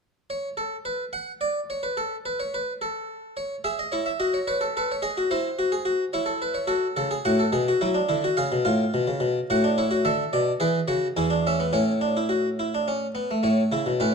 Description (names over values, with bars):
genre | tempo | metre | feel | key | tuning
classical, baroque-style 3-part fugue for harpsichord | 107 BPM | 3/4 | straight | F# minor, A major from 10.1 s | A4 = 441 Hz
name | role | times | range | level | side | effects
harpsichord | solo | 0.3-14.1 s | E2 to G#5 | -22 LUFS | equal | none
room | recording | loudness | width
moderate large studio reverb, RT60 1.5 s | dark, warm production | -22 LUFS | side -5 dB against mid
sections
0.0-10.1 A section; 10.1-13.4 B section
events
none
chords
0.0 N.C.; 3.4 C#m; 4.5 Aadd9; 5.0 G#7; 6.1 C#m/E; 6.7 F#m; 7.8 Dadd9; 8.4 C#7; 9.5 F#m/A; 10.1 Bm7/D; 10.6 C#madd11; 11.2 E7; 11.7 A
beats
| 0.02 0.58 1.14 | 1.70 2.25 2.81 | 3.37 3.92 4.48 | 5.03 5.59 6.14 | 6.70 7.26 7.82 | 8.38 8.94 9.50 | 10.06 10.62 11.18 | 11.74 12.31 12.88 | 13.44 14.00